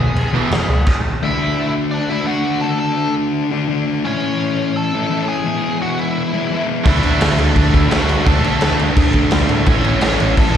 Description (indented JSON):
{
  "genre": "punk rock",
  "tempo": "170 BPM",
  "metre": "4/4",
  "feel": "straight",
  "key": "unclear",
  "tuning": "A4 = 440 Hz",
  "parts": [
    { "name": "biting lead guitar", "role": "melody", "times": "0.0-10.6 s", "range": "C#4 to A5", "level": "-23 LUFS", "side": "right 1 dB", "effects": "overdrive, slapback echo" },
    { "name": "overdriven picked electric bass", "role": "bass", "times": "0.0-0.8, 6.9-10.6 s", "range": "E1 to A2", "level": "-18 LUFS", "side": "equal", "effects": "none" },
    { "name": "raw garage drum kit", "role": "drums", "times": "0.2-1.0, 6.9-10.6 s", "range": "crash cymbal, kick drum, snare drum", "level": "-17 LUFS", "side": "equal", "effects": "none" },
    { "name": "overdriven electric guitar", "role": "riff", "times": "0.3-0.5, 6.8-10.6 s", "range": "E2 to D4", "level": "-20 LUFS", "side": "right 12 dB", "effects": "slapback echo" },
    { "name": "sludgy distorted guitar", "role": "riff", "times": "0.3-10.6 s", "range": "A2 to F#4", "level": "-19 LUFS", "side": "left 5 dB", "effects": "overdrive, slapback echo" }
  ],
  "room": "little or no reverb",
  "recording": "live gig heard through the venue's PA, recital hall reverb",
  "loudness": "-14 LUFS",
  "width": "side -9 dB against mid",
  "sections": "0.0-1.2 A section; 1.2-10.6 B section",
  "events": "half time 0.0-1.2",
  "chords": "0.0 E; 1.2 D; 4.0 A; 5.5 E; 6.9 D; 9.7 A",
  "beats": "0.16 0.52 0.87 | 1.22 1.58 1.93 2.28 | 2.63 2.99 3.34 3.69 | 4.04 4.40 4.75 5.10 | 5.45 5.80 6.16 6.51 | 6.86 7.21 7.56 7.91 | 8.26 8.61 8.96 9.32 | 9.67 10.02 10.37"
}